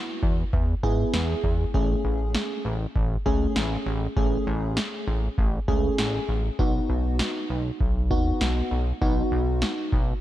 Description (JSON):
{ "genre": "synth-pop", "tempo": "99 BPM", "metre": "4/4", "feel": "straight", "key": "unclear", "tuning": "A4 = 440 Hz", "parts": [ { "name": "FM electric piano with soft pad layer", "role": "accompaniment", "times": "0.0-9.9 s", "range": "A3 to G#4", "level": "-28 LUFS", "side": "equal", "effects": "chorus" }, { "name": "chorused synth bass", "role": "bass", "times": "0.2-10.1 s", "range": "A1 to G#2", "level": "-26 LUFS", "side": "equal", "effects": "none" }, { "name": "electro analog drum machine", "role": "drums", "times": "0.2-10.1 s", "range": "kick drum, snare drum", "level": "-27 LUFS", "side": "equal", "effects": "overdrive" } ], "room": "light reverb", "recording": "dark, warm production", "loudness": "-22 LUFS", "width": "side -14 dB against mid", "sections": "0.0-10.2 A section", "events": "none", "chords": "0.0 E; 1.7 Amaj7; 6.6 B" }